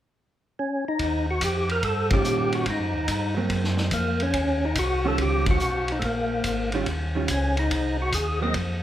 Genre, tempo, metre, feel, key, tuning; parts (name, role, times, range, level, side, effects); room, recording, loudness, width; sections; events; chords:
soul jazz organ trio; 143 BPM; 4/4; swing 68% on 8ths; Eb mixolydian; A4 = 440 Hz
percussive tonewheel organ; melody; 0.6-8.5 s; A3 to Eb5; -26 LUFS; left 1 dB; slow rotary speaker, overdrive, chorus vibrato
mellow tonewheel organ; bass; 1.0-8.8 s; Ab1 to Bb2; -27 LUFS; equal; slow rotary speaker
vintage drum kit; drums; 1.0-8.7 s; hi-hat, kick drum, ride cymbal, snare drum; -28 LUFS; equal
vintage hollow-body jazz guitar; accompaniment; 2.1-8.5 s; Eb3 to F4; -29 LUFS; right 5 dB
moderate recital hall reverb, RT60 1.6 s; recorded in a church or concert hall; -22 LUFS; side -12 dB against mid
1.0-8.8 A section
band accent 2.0, 5.4
0.0 N.C.; 1.0 Eb9; 2.7 Ab9; 4.3 Eb9; 6.0 Bbm7; 6.9 Eb9; 7.7 Ab7